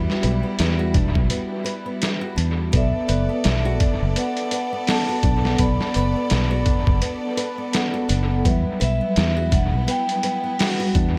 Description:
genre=trip hop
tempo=84 BPM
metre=4/4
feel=swing 58% on 16ths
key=B minor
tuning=A4 = 441 Hz
part: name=vibraphone with medium mallets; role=accompaniment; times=0.0-11.2 s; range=F#3 to F#5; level=-28 LUFS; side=equal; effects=tremolo, vintage 12-bit sampler grit, tape echo
part: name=rich symphonic violin section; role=sustained chords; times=0.0-11.2 s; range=G3 to D5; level=-36 LUFS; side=equal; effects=none
part: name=nylon-string guitar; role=arpeggios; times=0.0-11.1 s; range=B3 to B4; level=-33 LUFS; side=equal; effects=dub echo
part: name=fingered electric bass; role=bass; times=0.0-11.2 s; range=E1 to E2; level=-24 LUFS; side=equal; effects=none
part: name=trip hop sampler-style drum kit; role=drums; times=0.1-11.1 s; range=hi-hat, kick drum, snare drum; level=-25 LUFS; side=equal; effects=dub echo
part: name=vibraphone with medium mallets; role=melody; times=2.8-11.2 s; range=E5 to B5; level=-30 LUFS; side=equal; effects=tape echo
room=small room ambience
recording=echo-heavy mix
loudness=-21 LUFS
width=mono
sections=0.0-11.2 A section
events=none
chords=0.0 Emadd9; 2.7 Bm7; 8.4 Emadd9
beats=0.59 1.31 2.02 | 2.73 3.45 4.16 4.88 | 5.59 6.31 7.02 7.73 | 8.45 9.16 9.88 10.59

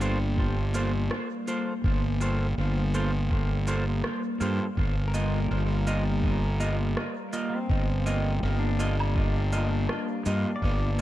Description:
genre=ambient dub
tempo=82 BPM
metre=4/4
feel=swing 56% on 16ths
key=unclear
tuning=A4 = 440 Hz
part: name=warbly tape-like pad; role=sustained chords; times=0.0-11.0 s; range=G3 to F5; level=-34 LUFS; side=left 2 dB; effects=chorus, built-in reverb
part: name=clean electric guitar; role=stabs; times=0.0-11.0 s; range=Bb3 to Eb5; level=-34 LUFS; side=right 2 dB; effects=dub echo
part: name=fuzz fingered electric bass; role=bass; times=0.0-11.0 s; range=G1 to G2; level=-26 LUFS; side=equal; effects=overdrive
part: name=electronic cabasa, rim click and woodblock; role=drums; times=0.0-11.0 s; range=none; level=-37 LUFS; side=right 1 dB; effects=dub echo
part: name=electronic kick drum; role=drums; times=0.4-10.8 s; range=none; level=-28 LUFS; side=equal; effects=none
part: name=pedal steel guitar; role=arpeggios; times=5.1-11.0 s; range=C4 to D5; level=-37 LUFS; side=left 1 dB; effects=dub echo
room=digital ambience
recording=vinyl crackle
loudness=-25 LUFS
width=side -14 dB against mid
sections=0.0-11.0 A section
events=none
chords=0.0 Gm11; 4.8 Ebsus2/G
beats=0.38 1.11 | 1.84 2.58 3.31 4.04 | 4.77 5.50 6.24 6.97 | 7.70 8.43 9.16 9.89 | 10.62

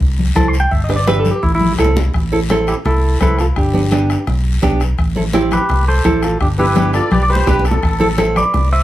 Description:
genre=latin, cumbia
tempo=169 BPM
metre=4/4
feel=straight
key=A minor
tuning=A4 = 441 Hz
part: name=fingered electric bass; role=bass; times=0.0-8.8 s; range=G1 to C2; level=-16 LUFS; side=equal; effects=none
part: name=bombo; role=percussion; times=0.0-8.7 s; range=none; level=-21 LUFS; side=equal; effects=none
part: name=congas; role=percussion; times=0.0-8.7 s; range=none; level=-21 LUFS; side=left 2 dB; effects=none
part: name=guiro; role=percussion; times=0.0-8.8 s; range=none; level=-31 LUFS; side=left 4 dB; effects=none
part: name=clean electric guitar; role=melody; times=0.4-8.8 s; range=D4 to C6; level=-19 LUFS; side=right 1 dB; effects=spring reverb
part: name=nylon-string guitar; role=accompaniment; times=0.4-8.4 s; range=B3 to C5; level=-17 LUFS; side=right 3 dB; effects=none
part: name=musette accordion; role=second line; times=6.6-8.2 s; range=A4 to D5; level=-20 LUFS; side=left 3 dB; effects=none
room=moderate studio reverb, RT60 0.5 s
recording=heard from further back in the room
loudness=-12 LUFS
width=side -14 dB against mid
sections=0.0-2.1 A section; 2.1-8.8 B section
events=clean electric guitar solo 0.0-2.1; drum fill 1.6-2.1, 6.8-7.8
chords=0.0 Am; 0.7 G; 1.4 Am; 3.6 G; 5.0 Amadd9; 6.4 G; 7.8 Amadd9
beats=0.01 0.36 | 0.72 1.07 1.43 1.79 | 2.14 2.50 2.85 3.21 | 3.56 3.92 4.27 4.63 | 4.98 5.34 5.70 6.05 | 6.41 6.76 7.12 7.47 | 7.83 8.18 8.54

